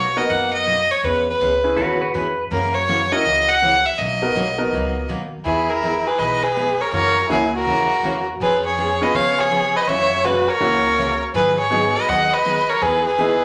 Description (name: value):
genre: country, western swing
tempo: 163 BPM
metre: 4/4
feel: swing 66% on 8ths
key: unclear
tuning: A4 = 440 Hz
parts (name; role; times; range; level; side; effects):
- clear fiddle; melody; 0.0-13.4 s; G#4 to F#5; -21 LUFS; equal; none
- picked steel-string acoustic guitar; accompaniment; 0.0-13.3 s; B2 to G#4; -29 LUFS; equal; none
- upright bass; bass; 0.0-13.4 s; B1 to C#3; -34 LUFS; equal; none
- bright upright piano; accompaniment; 0.2-5.1, 7.3-13.4 s; A#3 to B4; -26 LUFS; equal; none
- pedal steel guitar; second line; 1.8-2.4 s; F#4 to B4; -25 LUFS; equal; none
- dark erhu; second line; 5.5-13.4 s; E4 to D#5; -23 LUFS; equal; none
room: wet large studio reverb, RT60 0.9 s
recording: none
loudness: -19 LUFS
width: mono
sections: 0.0-13.4 A section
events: none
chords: 0.0 Bmaj7; 1.0 E6; 2.5 F#7; 4.0 Bmaj7; 5.5 Emaj7; 6.9 F#7; 8.4 C#7/E#; 9.9 F#7; 11.3 G#m7; 12.8 Emaj7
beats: 0.30 0.67 | 1.03 1.40 1.77 2.14 | 2.51 2.88 3.25 3.61 | 3.98 4.35 4.72 5.09 | 5.46 5.82 6.19 6.56 | 6.93 7.30 7.66 8.03 | 8.40 8.77 9.14 9.51 | 9.87 10.24 10.61 10.98 | 11.35 11.72 12.08 12.45 | 12.82 13.19